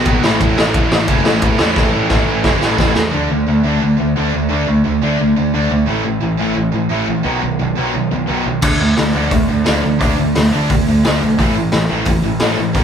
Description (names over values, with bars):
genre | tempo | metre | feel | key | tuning
punk rock | 175 BPM | 4/4 | straight | unclear | A4 = 440 Hz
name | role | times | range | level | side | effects
distorted electric guitar | riff | 0.0-3.1 s | A2 to B3 | -22 LUFS | right 1 dB | distortion
overdriven semi-hollow guitar | riff | 0.0-12.8 s | A2 to D4 | -19 LUFS | left 7 dB | none
tight distorted guitar | riff | 0.0-12.8 s | A2 to F#4 | -18 LUFS | right 7 dB | distortion
growling picked electric bass | bass | 0.0-12.8 s | F#1 to E2 | -21 LUFS | equal | overdrive
raw garage drum kit | drums | 0.1-3.0, 8.6-12.8 s | crash cymbal, hi-hat, kick drum, ride cymbal, snare drum | -16 LUFS | equal | none
room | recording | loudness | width
light reverb | band playing live in one room | -13 LUFS | side -8 dB against mid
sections
0.0-3.1 A section; 3.1-12.8 B section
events
drum fill 1.8-3.1; half time 3.1-12.8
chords
0.2 A; 3.1 D5; 5.9 A5; 7.3 B; 8.6 D5; 11.4 A5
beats
0.06 | 0.40 0.74 1.08 1.42 | 1.77 2.11 2.45 2.79 | 3.13 3.48 3.82 4.16 | 4.51 4.85 5.20 5.54 | 5.88 6.23 6.57 6.91 | 7.26 7.60 7.95 8.29 | 8.63 8.98 9.32 9.66 | 10.01 10.35 10.70 11.04 | 11.39 11.73 12.07 12.42 | 12.76